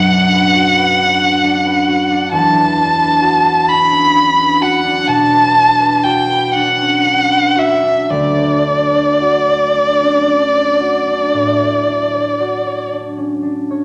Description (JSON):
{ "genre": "classical, impressionist duo for violin and harp", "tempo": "36-45 BPM (dotted quarters)", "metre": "12/8", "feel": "rubato", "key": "D major", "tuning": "A4 = 440 Hz", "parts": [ { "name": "warm violin", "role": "melody", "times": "0.0-12.9 s", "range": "D5 to B5", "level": "-14 LUFS", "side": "equal", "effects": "none" }, { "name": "concert harp", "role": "accompaniment", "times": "0.0-13.8 s", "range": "B1 to C#5", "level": "-19 LUFS", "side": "equal", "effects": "none" } ], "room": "wet recital hall reverb, RT60 1.2 s", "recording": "none", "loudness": "-13 LUFS", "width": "mono", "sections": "0.0-13.8 A section", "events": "none", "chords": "0.0 Bm; 2.3 E9sus4; 8.1 Dmaj7" }